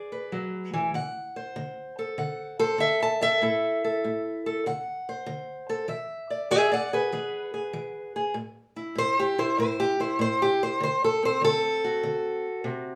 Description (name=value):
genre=acoustic country blues, solo or duo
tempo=97 BPM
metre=4/4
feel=swing 67% on 8ths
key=unclear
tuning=A4 = 441 Hz
part: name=fingerpicked steel-string acoustic guitar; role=solo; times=0.0-13.0 s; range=A2 to A5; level=-27 LUFS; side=equal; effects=none
room=moderate studio reverb, RT60 0.7 s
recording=band playing live in one room, small room ambience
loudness=-27 LUFS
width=mono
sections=0.0-8.3 A section; 8.3-13.0 B section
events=steel-string acoustic guitar solo 8.3-13.0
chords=0.0 E7; 0.9 D7; 3.4 A5; 4.6 D7; 5.9 E7; 8.3 A5; 10.8 D7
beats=0.32 | 0.94 1.56 2.18 2.79 | 3.41 4.03 4.65 5.27 | 5.88 6.50 7.12 7.73 | 8.35 8.96 9.58 10.20 | 10.81 11.43 12.04 12.65